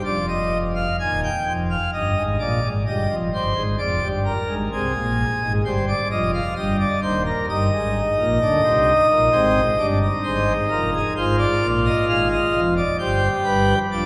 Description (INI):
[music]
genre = classical, baroque-style 3-part fugue for pipe organ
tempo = 65 BPM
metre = 4/4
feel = straight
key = F minor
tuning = A4 = 438 Hz
[part]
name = pipe organ, plenum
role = solo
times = 0.0-14.1 s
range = Eb1 to Ab5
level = -21 LUFS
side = equal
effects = none
[sound]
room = wet church reverb, RT60 3.5 s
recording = recorded in a church or concert hall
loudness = -21 LUFS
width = mono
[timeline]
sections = 0.1-14.1 A section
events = none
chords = 0.1 Fm; 1.9 Eb/G; 3.8 Ddim/F; 5.7 Cm; 7.5 Ebmaj7/G; 9.3 Ab; 11.2 Dm7b5/Ab; 13.0 G7